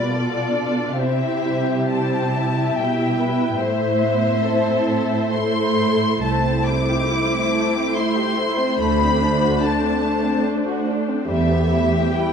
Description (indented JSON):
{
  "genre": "classical, slow romantic movement for string orchestra",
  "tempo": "70 BPM",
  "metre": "3/4",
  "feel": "uneven beats, rubato",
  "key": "unclear",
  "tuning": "A4 = 440 Hz",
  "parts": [
    { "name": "rich studio violin section", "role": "melody", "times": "0.0-12.3 s", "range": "C5 to D6", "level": "-24 LUFS", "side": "left 4 dB", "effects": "none" },
    { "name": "warm studio violin section", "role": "second line", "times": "0.0-12.3 s", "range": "G3 to E5", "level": "-24 LUFS", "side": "left 2 dB", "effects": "none" },
    { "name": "rich studio viola section", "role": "accompaniment", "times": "0.0-12.3 s", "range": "G3 to A4", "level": "-23 LUFS", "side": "right 1 dB", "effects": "none" },
    { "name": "dark studio cello section", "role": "bass", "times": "0.0-12.0 s", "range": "C2 to C3", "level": "-22 LUFS", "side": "right 3 dB", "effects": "none" }
  ],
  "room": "moderate scoring stage reverb, RT60 1.7 s",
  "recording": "dark, warm production",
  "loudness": "-17 LUFS",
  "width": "side -7 dB against mid",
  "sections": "0.0-12.3 A section",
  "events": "none",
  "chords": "0.0 G/B (rootless); 1.0 C; 3.6 Am; 6.2 Am/C; 8.8 D7(no3); 11.3 Em"
}